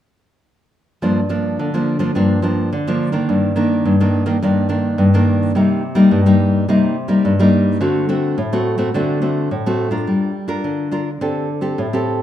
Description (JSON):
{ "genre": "samba", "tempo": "106 BPM", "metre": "4/4", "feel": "straight", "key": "G minor", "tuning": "A4 = 440 Hz", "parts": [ { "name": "nylon-string guitar", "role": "solo", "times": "1.0-12.2 s", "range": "G2 to Bb4", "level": "-14 LUFS", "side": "equal", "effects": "none" } ], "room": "moderate large studio reverb, RT60 1.3 s", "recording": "minimal, uncompressed stereo recording", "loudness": "-15 LUFS", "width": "side -11 dB against mid", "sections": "1.0-10.1 A section; 10.1-12.2 B section", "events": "none", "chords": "1.0 Gm7; 3.3 Ebmaj7/G; 5.5 Cm7; 7.8 D7; 10.1 Gm7; 11.2 D7sus4", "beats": "| 1.03 1.59 2.16 2.72 | 3.29 3.85 4.42 4.98 | 5.55 6.11 6.68 7.24 | 7.81 8.38 8.94 9.51 | 10.07 10.64 11.21 11.77" }